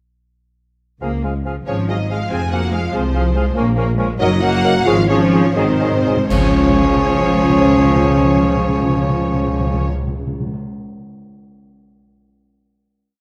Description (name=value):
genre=classical, dramatic, fast romantic movement for symphony orchestra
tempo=78-97 BPM (dotted quarters)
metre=6/8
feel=rubato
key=Db major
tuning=A4 = 440 Hz
part: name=concert flute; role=second line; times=1.0-9.9 s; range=Gb5 to Ab5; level=-31 LUFS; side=equal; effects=none
part: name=mellow cor anglais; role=second line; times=1.0-9.9 s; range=Db5 to F5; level=-29 LUFS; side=equal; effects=none
part: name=warm clarinet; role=second line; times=1.0-9.9 s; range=Ab4 to Bb4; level=-29 LUFS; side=equal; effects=none
part: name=warm bassoon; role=accompaniment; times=1.0-9.9 s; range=F3 to Gb3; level=-29 LUFS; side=equal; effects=none
part: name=dark tuba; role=bass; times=1.0-9.9 s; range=F1 to Db2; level=-25 LUFS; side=equal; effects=none
part: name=warm symphonic cello section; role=bass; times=1.0-9.9 s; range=Db2 to Bb3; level=-26 LUFS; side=equal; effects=none
part: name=warm symphonic double bass section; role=bass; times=1.0-9.9 s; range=Gb1 to F2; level=-24 LUFS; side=equal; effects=none
part: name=timpani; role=percussion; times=1.0-1.6, 5.6-10.6 s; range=Ab2 to Db3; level=-26 LUFS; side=equal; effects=none
part: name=warm studio violin section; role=melody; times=1.7-9.9 s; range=C5 to Ab5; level=-28 LUFS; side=equal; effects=none
part: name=warm symphonic violin section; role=second line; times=1.7-9.9 s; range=C5 to Ab5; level=-30 LUFS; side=equal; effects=none
part: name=rich symphonic viola section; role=accompaniment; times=1.7-9.9 s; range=Eb3 to C4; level=-25 LUFS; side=equal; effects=none
part: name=mellow French horn section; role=sustained chords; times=1.7-9.9 s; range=C4 to Ab4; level=-22 LUFS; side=equal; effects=none
part: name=cymbal swell, clash cymbals and concert bass drum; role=percussion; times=3.6-7.2 s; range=none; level=-28 LUFS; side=equal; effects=none
room=moderate scoring stage reverb, RT60 1.5 s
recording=none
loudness=-16 LUFS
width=mono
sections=1.0-6.3 A section; 6.3-9.1 final chord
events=slowing down 2.9-6.3; timpani fill 5.6-6.3; band accent 6.3-6.8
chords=1.0 Db; 2.3 Fm; 3.6 Bbm7; 4.2 Ebm/Gb; 4.9 Db/Ab; 5.6 Ab7; 6.3 Db